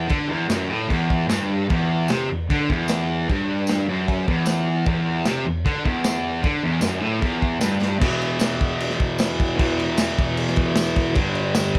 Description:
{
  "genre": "garage rock duo or trio",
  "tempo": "152 BPM",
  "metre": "4/4",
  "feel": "straight",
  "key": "E minor",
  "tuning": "A4 = 441 Hz",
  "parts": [
    { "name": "fuzz guitar", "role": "riff", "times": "0.0-11.8 s", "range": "E2 to G3", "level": "-24 LUFS", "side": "equal", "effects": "distortion" },
    { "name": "crunchy breakbeat drum kit", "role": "drums", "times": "0.1-11.8 s", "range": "crash cymbal, kick drum, snare drum", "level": "-26 LUFS", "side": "equal", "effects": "none" },
    { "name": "tambourine", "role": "percussion", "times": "0.5-11.6 s", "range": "none", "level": "-36 LUFS", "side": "equal", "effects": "none" }
  ],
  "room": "light reverb",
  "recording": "none",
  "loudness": "-22 LUFS",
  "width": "mono",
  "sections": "0.0-8.0 A section; 8.0-11.8 B section",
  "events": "drum fill 7.8",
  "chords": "0.0 Em; 8.0 E5; 11.1 G5"
}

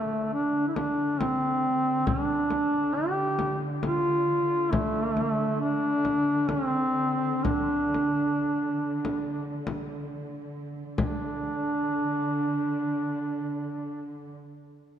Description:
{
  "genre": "caucasian folk, Caucasian lament",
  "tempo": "45-69 BPM",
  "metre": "3/4",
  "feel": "rubato",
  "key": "D minor",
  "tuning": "A4 = 437 Hz",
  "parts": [
    { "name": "mellow duduk", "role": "melody", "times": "0.0-14.3 s", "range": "A3 to G4", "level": "-26 LUFS", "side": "equal", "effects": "none" },
    { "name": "warm studio string section", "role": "drone", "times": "0.0-14.3 s", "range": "D3", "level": "-35 LUFS", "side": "right 2 dB", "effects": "none" },
    { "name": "frame drum", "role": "percussion", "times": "0.8-11.6 s", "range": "none", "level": "-33 LUFS", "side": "left 3 dB", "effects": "none" }
  ],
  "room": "wet church reverb, RT60 2.9 s",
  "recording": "dark, warm production",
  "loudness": "-25 LUFS",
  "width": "side -9 dB against mid",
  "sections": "0.0-11.0 A section; 11.0-14.8 B section",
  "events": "slowing down 4.7-11.0",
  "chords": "none"
}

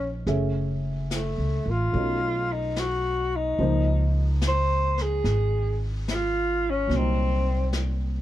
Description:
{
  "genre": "jazz ballad",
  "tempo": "72 BPM",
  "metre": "4/4",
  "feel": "swing 67% on 8ths",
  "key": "unclear",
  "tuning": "A4 = 440 Hz",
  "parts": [
    { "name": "breathy tenor saxophone", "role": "melody", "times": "0.0-7.8 s", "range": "A3 to C5", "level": "-27 LUFS", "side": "equal", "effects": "none" },
    { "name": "dark baby grand piano", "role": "accompaniment", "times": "0.0-8.2 s", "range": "Bb2 to Fb5", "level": "-32 LUFS", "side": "right 1 dB", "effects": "none" },
    { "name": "upright bass", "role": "bass", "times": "0.0-8.2 s", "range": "Gb1 to Db2", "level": "-25 LUFS", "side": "equal", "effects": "none" },
    { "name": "jazz brush drum kit", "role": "drums", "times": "0.3-8.2 s", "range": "brushed snare drum, hi-hat, snare drum", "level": "-36 LUFS", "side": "left 2 dB", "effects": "none" }
  ],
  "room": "little or no reverb",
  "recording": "dark, warm production",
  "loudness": "-23 LUFS",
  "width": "side -13 dB against mid",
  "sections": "0.0-8.2 A section",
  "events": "none",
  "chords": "0.3 Gbm7; 1.9 B9; 3.6 Dbmaj13; 6.9 Cm7b5"
}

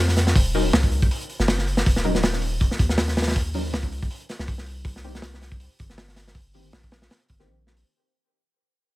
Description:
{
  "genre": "drum and bass, jungle",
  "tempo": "160 BPM",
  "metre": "4/4",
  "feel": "swing 55% on 16ths",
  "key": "unclear",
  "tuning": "A4 = 439 Hz",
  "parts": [
    { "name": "long sustained 808-style bass", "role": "bass", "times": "0.0-7.8 s", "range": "Eb1 to F2", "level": "-25 LUFS", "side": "equal", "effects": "none" },
    { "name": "crunchy breakbeat drum kit", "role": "drums", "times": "0.1-7.8 s", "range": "hi-hat, kick drum, snare drum", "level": "-22 LUFS", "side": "equal", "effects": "none" },
    { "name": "orchestra-hit-like synth stab", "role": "stabs", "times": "0.5-7.7 s", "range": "Eb3 to Bb4", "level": "-29 LUFS", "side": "left 2 dB", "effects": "built-in reverb, dub echo" }
  ],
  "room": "small room ambience",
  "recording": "none",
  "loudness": "-20 LUFS",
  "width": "side -18 dB against mid",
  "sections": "0.0-7.9 A section",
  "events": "fade-out 0.0-7.9; filter sweep on synth stab 0.0-7.9",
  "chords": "0.4 Ebm7; 4.1 Cm7"
}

